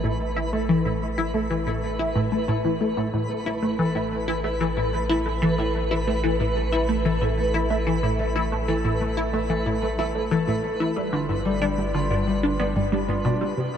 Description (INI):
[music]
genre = ambient, sequencer-driven space music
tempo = 92 BPM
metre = 4/4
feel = straight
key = unclear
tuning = A4 = 441 Hz
[part]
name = concert harp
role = arpeggios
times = 0.0-13.8 s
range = G3 to E5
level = -30 LUFS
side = left 2 dB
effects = auto-pan, tape echo
[part]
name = resonant blip pluck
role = riff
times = 0.0-13.7 s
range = G2 to E4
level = -24 LUFS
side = equal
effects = phaser, lush chorus, tape echo
[part]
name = round analog bass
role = bass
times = 0.0-13.5 s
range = G1 to A1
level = -30 LUFS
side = equal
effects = none
[part]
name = twinkling granular texture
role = texture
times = 0.0-13.8 s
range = G4 to B4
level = -30 LUFS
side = equal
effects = built-in reverb
[sound]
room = moderate huge ambient reverb, RT60 8.6 s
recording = dark, warm production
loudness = -22 LUFS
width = side -8 dB against mid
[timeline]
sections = 0.0-13.6 A section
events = fade-in on harp 0.0-13.6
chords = 0.0 A5; 11.0 G7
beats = | 0.53 1.18 1.83 2.48 | 3.14 3.79 4.44 5.09 | 5.75 6.40 7.05 7.70 | 8.36 9.01 9.66 10.31 | 10.96 11.62 12.27 12.92 | 13.57